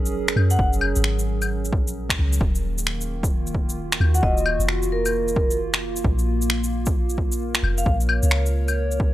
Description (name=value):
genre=future garage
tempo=132 BPM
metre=4/4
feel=swing 63% on 16ths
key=Eb minor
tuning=A4 = 440 Hz
part: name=warbly tape-like pad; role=sustained chords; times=0.0-9.1 s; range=Eb3 to Db5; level=-28 LUFS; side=right 1 dB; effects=chorus, built-in reverb, sidechain pumping
part: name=soft 808-style bass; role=bass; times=0.0-9.1 s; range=Eb1 to Gb2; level=-23 LUFS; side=equal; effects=sidechain pumping
part: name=electronic shaker, finger snaps and claves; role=drums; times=0.1-9.0 s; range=none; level=-25 LUFS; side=left 1 dB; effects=overdrive, studio ambience
part: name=vibraphone with medium hard mallets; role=melody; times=0.5-0.6, 4.1-7.8 s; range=Bb4 to Gb5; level=-27 LUFS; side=equal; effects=analog delay
part: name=electronic kick drum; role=drums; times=0.6-9.1 s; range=none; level=-23 LUFS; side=equal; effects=overdrive, studio ambience
room=little or no reverb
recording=dry, gritty hardware recording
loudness=-19 LUFS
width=side -15 dB against mid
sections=0.0-2.4 A section; 2.4-9.1 A section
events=band accent 2.1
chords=0.0 Gb; 2.4 Ebm; 6.0 Bbm